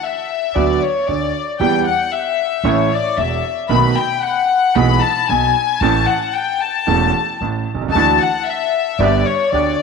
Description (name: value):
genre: tango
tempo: 114 BPM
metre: 4/4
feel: rubato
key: unclear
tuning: A4 = 440 Hz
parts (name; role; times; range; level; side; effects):
- warm studio violin section; second line; 0.0-9.8 s; C#5 to B5; -16 LUFS; left 8 dB; tape echo
- bright grand piano; accompaniment; 0.6-9.7 s; E1 to A4; -19 LUFS; right 10 dB; none
- upright bass; bass; 0.6-9.7 s; E1 to E2; -22 LUFS; right 1 dB; none
- bandoneon; stabs; 8.0-9.8 s; B3 to G4; -26 LUFS; right 9 dB; none
room: wet echo chamber reverb, RT60 1.6 s, studio reverb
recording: 1960s-style stereo with parts hard left and right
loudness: -14 LUFS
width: side -5 dB against mid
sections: 0.0-9.8 A section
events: violin section solo 0.0-9.8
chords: 0.0 N.C.; 0.6 Bm/D; 1.6 Em; 2.7 A; 3.7 B7; 4.8 E/B; 5.8 A; 7.9 Dadd9; 9.0 G